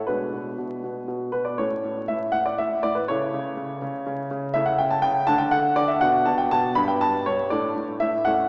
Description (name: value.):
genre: classical-period piano sonatina.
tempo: 81 BPM (dotted quarters).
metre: 6/8.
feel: straight.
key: A major, D major from 4.6 s.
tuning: A4 = 440 Hz.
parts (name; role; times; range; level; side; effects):
warm grand piano; solo; 0.0-8.5 s; G2 to B5; -24 LUFS; equal; none.
room: wet church reverb, RT60 3.4 s.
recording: recorded in a church or concert hall, vinyl crackle, small speaker sound.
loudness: -24 LUFS.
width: mono.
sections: 0.0-8.5 A section.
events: none.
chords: 0.1 Bm6; 1.6 A; 3.1 A/C#; 5.3 D5; 6.0 Bm; 6.8 G; 7.5 D5/A.